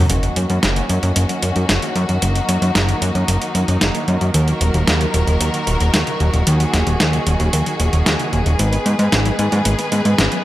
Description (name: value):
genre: italo disco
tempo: 113 BPM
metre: 4/4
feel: straight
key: unclear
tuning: A4 = 440 Hz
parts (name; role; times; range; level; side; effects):
- rich symphonic string section; sustained chords; 0.0-10.4 s; D#3 to B4; -22 LUFS; equal; vintage 12-bit sampler grit
- warbly dusty pluck; arpeggios; 0.0-10.4 s; C#3 to C#4; -27 LUFS; left 1 dB; none
- fat analog bass; bass; 0.0-10.3 s; D#1 to G#2; -17 LUFS; equal; none
- clean 12-bit digital drum machine; drums; 0.1-10.4 s; hi-hat, snare drum; -20 LUFS; equal; overdrive
room: light reverb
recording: none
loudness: -15 LUFS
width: side -15 dB against mid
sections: 0.1-10.4 A section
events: none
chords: 0.1 F#6; 4.3 D#m; 8.6 G#m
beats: | 0.10 0.63 1.16 1.69 | 2.22 2.75 3.28 3.81 | 4.35 4.88 5.41 5.94 | 6.47 7.00 7.53 8.06 | 8.59 9.12 9.66 10.19